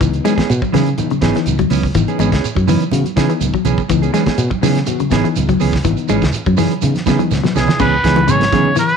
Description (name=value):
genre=afrobeat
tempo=123 BPM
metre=4/4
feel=straight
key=C# minor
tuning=A4 = 440 Hz
part: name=mellow reed electric piano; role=accompaniment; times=0.0-8.8 s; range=E3 to F#4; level=-23 LUFS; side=left 14 dB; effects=none
part: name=semi-hollow electric guitar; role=arpeggios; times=0.0-8.9 s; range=C#3 to G#3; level=-20 LUFS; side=left 11 dB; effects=none
part: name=fingered electric bass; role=bass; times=0.0-8.7 s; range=G#1 to C#3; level=-18 LUFS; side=equal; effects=none
part: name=cloth-damped thuddy drum kit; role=drums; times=0.0-9.0 s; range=crash cymbal, hi-hat, kick drum, snare drum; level=-21 LUFS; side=equal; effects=none
part: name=congas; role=percussion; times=0.0-8.8 s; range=none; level=-22 LUFS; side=right 11 dB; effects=none
part: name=shekere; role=percussion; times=0.0-8.9 s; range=none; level=-27 LUFS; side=right 7 dB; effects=none
part: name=mellow electric guitar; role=stabs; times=0.2-8.7 s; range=E3 to G#4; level=-20 LUFS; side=right 10 dB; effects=none
part: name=clear trumpet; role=melody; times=7.6-9.0 s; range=G#4 to C#5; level=-15 LUFS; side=equal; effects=none
room=light reverb, small room ambience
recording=1960s-style stereo with parts hard left and right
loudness=-13 LUFS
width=side -6 dB against mid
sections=0.0-7.8 A section; 7.8-9.0 B section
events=drum fill 7.1-7.8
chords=0.0 C#m7